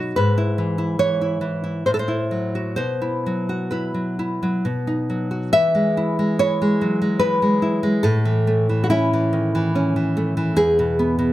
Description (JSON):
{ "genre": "romantic piece for solo classical guitar", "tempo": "64-77 BPM", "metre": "3/4", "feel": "rubato", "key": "E major", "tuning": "A4 = 440 Hz", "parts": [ { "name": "nylon-string guitar", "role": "solo", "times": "0.0-11.3 s", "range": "E2 to B5", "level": "-18 LUFS", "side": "equal", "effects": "none" } ], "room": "moderate recital hall reverb, RT60 1.5 s", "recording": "close, detailed microphones", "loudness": "-18 LUFS", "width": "side -15 dB against mid", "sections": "0.0-5.6 A section; 5.6-11.3 B section", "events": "none", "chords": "0.2 E/G#; 1.9 F#m7b5/A; 2.8 Bsus4; 4.6 B; 5.6 E; 8.1 A; 10.6 E" }